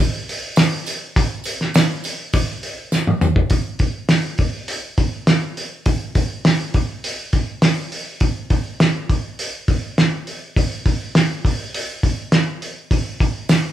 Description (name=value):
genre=rock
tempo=102 BPM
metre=4/4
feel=straight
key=none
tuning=none
part: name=cloth-damped thuddy drum kit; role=drums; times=0.0-13.6 s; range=hi-hat, kick drum, snare drum, toms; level=-17 LUFS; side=equal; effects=none
part: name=tambourine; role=percussion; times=0.6-3.3, 13.5-13.6 s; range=none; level=-34 LUFS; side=right 4 dB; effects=none
room=little or no reverb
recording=band playing live in one room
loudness=-17 LUFS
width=side -12 dB against mid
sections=0.0-3.5 A section; 3.5-13.7 B section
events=drum fill 2.9-3.5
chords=none